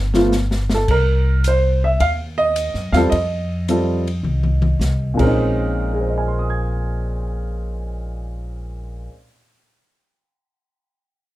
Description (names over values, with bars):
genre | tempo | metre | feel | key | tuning
jazz piano trio | 107 BPM | 4/4 | swing 69% on 8ths | Bb minor | A4 = 441 Hz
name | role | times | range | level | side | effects
upright bass | bass | 0.0-9.1 s | G1 to Gb2 | -20 LUFS | equal | none
warm baby grand piano | melody | 0.1-9.4 s | Bb2 to Ab6 | -20 LUFS | right 1 dB | none
open jazz drum kit | drums | 0.1-5.3 s | crash cymbal, hi-hat, kick drum, ride cymbal, snare drum, toms | -25 LUFS | left 2 dB | none
room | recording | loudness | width
light reverb | dark, warm production | -17 LUFS | side -16 dB against mid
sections
0.9-5.4 A section; 5.4-7.6 B section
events
drum fill 0.0-0.9, 4.2-4.8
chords
0.0 G7(no3); 0.9 Cm7; 3.1 F7(no3); 5.1 Bbm11